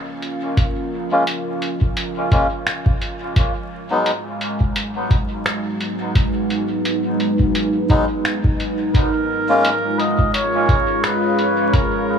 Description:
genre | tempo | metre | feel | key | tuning
ambient dub | 86 BPM | 4/4 | swing 56% on 16ths | unclear | A4 = 440 Hz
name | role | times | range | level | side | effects
deep dark ambient pad | sustained chords | 0.0-12.2 s | G#3 to F#5 | -22 LUFS | right 1 dB | chorus, built-in reverb
lo-fi sampler-style drum kit | drums | 0.2-11.9 s | finger snaps, hi-hat | -26 LUFS | equal | dub echo
electronic kick drum | drums | 0.6-11.9 s | none | -18 LUFS | equal | overdrive
melodica | stabs | 1.1-9.7 s | F#3 to E#4 | -24 LUFS | left 1 dB | low-pass filter, dub echo
trumpet with cup mute | melody | 8.9-12.2 s | A#4 to D#5 | -20 LUFS | equal | dub echo
room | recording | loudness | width
light reverb | vinyl crackle, small room ambience | -17 LUFS | side -7 dB against mid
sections
0.0-12.2 A section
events
none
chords
0.0 A#m7; 3.4 G#m7; 8.9 A#m7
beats
| 0.57 1.27 1.97 2.67 | 3.36 4.06 4.76 5.46 | 6.15 6.85 7.55 8.25 | 8.94 9.64 10.34 11.04 | 11.73

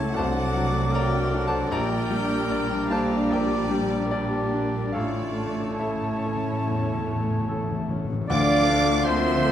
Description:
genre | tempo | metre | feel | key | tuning
classical, romantic movement for piano and orchestra | 70-78 BPM | 4/4 | rubato | unclear | A4 = 438 Hz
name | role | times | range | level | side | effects
bright grand piano | melody | 0.0-9.5 s | A1 to E6 | -29 LUFS | left 2 dB | none
dark chamber violin section | melody | 0.0-9.5 s | E4 to D6 | -34 LUFS | right 1 dB | none
bright concert flute | second line | 0.0-9.5 s | E5 to D6 | -32 LUFS | left 2 dB | none
warm chamber violin section | second line | 0.0-9.5 s | D4 to A5 | -37 LUFS | left 1 dB | none
warm clarinet | second line | 0.0-9.5 s | D4 to D5 | -34 LUFS | left 1 dB | none
warm chamber viola section | accompaniment | 0.0-9.5 s | F3 to E4 | -32 LUFS | left 1 dB | none
mellow French horn section | sustained chords | 0.0-9.5 s | F#3 to E4 | -32 LUFS | left 2 dB | none
dark chamber double bass section | bass | 0.0-9.5 s | A1 to D2 | -32 LUFS | right 3 dB | none
warm chamber cello section | bass | 0.0-9.5 s | D2 to C#3 | -31 LUFS | right 3 dB | none
clear oboe | second line | 0.1-9.5 s | C5 to D5 | -35 LUFS | right 2 dB | none
mellow bassoon | accompaniment | 0.1-7.9 s | F#3 to A3 | -34 LUFS | right 2 dB | none
timpani | percussion | 5.0-9.4 s | A2 to D3 | -32 LUFS | left 2 dB | none
dark trombone section | sustained chords | 8.3-9.5 s | F3 to A3 | -35 LUFS | right 6 dB | none
dark trumpet section | stabs | 8.3-9.5 s | C5 to D5 | -30 LUFS | right 4 dB | none
mellow tuba | bass | 8.3-9.5 s | D2 | -32 LUFS | right 3 dB | none
room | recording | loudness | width
light reverb | close, detailed microphones | -22 LUFS | side -10 dB against mid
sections
0.0-8.3 A section; 8.3-9.5 B section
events
timpani fill 5.0-8.3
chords
0.2 D7/C; 1.7 Gm/Bb; 5.0 A; 8.3 Dm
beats
0.16 0.94 | 1.73 2.52 3.31 4.12 | 4.96 5.81 6.65 7.47 | 8.30 9.07

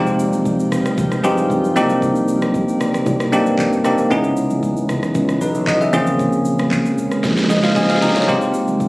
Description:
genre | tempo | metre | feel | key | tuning
amapiano | 115 BPM | 4/4 | straight | F minor | A4 = 437 Hz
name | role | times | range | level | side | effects
bell-like tine electric piano | accompaniment | 0.0-8.9 s | Ab3 to Bb5 | -16 LUFS | equal | medium stereo tremolo
glassy FM pad | sustained chords | 0.0-8.9 s | C3 to G5 | -25 LUFS | right 1 dB | ensemble chorus, built-in reverb, sidechain pumping
sustaining fretless electric bass | bass | 0.0-8.2 s | F1 to G2 | -22 LUFS | equal | none
afro-pop drum kit | drums | 0.1-8.9 s | handclaps, kick drum, rim click, shaker, snare drum | -24 LUFS | equal | none
congas | percussion | 0.3-8.8 s | none | -30 LUFS | equal | none
room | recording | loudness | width
light reverb, digital ambience | recorded on a phone in the room, studio reverb | -14 LUFS | side -22 dB against mid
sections
0.0-8.9 A section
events
drum fill 7.2-8.3; tine electric piano fill 7.2-8.3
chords
0.0 Fm9; 1.8 Cm9; 4.1 Dbm9; 5.9 Bbm9; 8.3 Fm9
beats
0.46 0.98 1.50 | 2.02 2.54 3.06 3.59 | 4.11 4.63 5.15 5.67 | 6.20 6.72 7.24 7.76 | 8.28 8.80

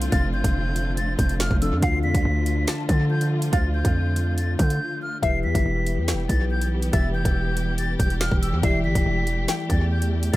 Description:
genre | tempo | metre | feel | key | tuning
hip hop, drill | 141 BPM | 4/4 | half-time | E phrygian | A4 = 440 Hz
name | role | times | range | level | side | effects
mellow tine electric piano | accompaniment | 0.0-10.4 s | D3 to D5 | -30 LUFS | left 3 dB | slow stereo tremolo, analog delay
dark symphonic string section | sustained chords | 0.0-10.4 s | D3 to G4 | -31 LUFS | right 1 dB | none
distorted 808-style bass | bass | 0.0-10.4 s | E1 to D3 | -24 LUFS | equal | distortion
drill drum kit | drums | 0.0-10.4 s | finger snaps, hi-hat, kick drum, rim click, snare drum | -24 LUFS | equal | none
hollow concert flute | melody | 0.1-10.4 s | E6 to C7 | -30 LUFS | left 1 dB | analog delay
warbly dusty pluck | second line | 0.1-10.4 s | E5 to A5 | -34 LUFS | left 2 dB | chorus, phaser, analog delay
room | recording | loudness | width
little or no reverb | echo-heavy mix | -20 LUFS | side -17 dB against mid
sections
0.0-5.2 A section; 5.2-10.4 A section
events
break 4.8-5.2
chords
0.0 F6; 1.8 Dm; 5.2 Em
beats
| 0.12 0.55 0.97 1.40 | 1.82 2.25 2.68 3.10 | 3.53 3.95 4.38 4.80 | 5.23 5.66 6.08 6.51 | 6.93 7.36 7.78 8.21 | 8.63 9.06 9.48 9.91 | 10.34

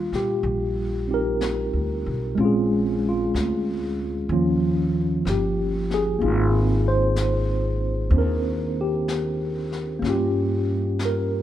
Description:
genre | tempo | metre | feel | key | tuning
jazz | 62 BPM | 4/4 | swing 67% on 8ths | Eb major | A4 = 440 Hz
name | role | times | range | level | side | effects
mellow tine electric piano | accompaniment | 0.0-11.4 s | F3 to C5 | -23 LUFS | equal | medium stereo tremolo
upright bass | bass | 0.0-11.4 s | G1 to Bb2 | -25 LUFS | equal | none
vintage brush drum kit | drums | 0.1-11.4 s | brushed snare drum, hi-hat, snare drum | -38 LUFS | left 3 dB | none
room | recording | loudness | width
moderate large studio reverb, RT60 1.3 s | minimal, uncompressed stereo recording | -21 LUFS | side -12 dB against mid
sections
0.0-11.4 A section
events
none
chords
0.0 Ebmaj9; 2.4 Bbm7; 4.3 Eb9; 6.2 Ab69; 10.0 Gm7b5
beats
0.45 1.42 | 2.38 3.34 4.30 5.25 | 6.21 7.16 8.12 9.08 | 10.04 11.00

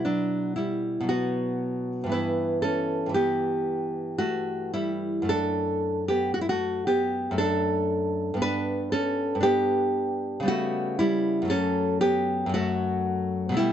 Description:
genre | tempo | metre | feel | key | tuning
classical, baroque-style dance for nylon-string guitar | 58 BPM | 3/4 | rubato | unclear | A4 = 441 Hz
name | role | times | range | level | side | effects
nylon-string guitar | solo | 0.0-13.7 s | F#2 to B4 | -24 LUFS | equal | none
room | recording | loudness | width
light reverb | nothing above 7.9 kHz | -24 LUFS | side -9 dB against mid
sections
0.0-13.7 A section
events
none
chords
0.0 B5; 2.1 Em/G; 5.3 D/F#; 8.4 G; 10.5 C#m7b5; 11.5 F#m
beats
0.05 1.09 | 2.12 3.16 4.19 | 5.29 6.33 7.37 | 8.40 9.41 10.46 | 11.50 12.53 13.58

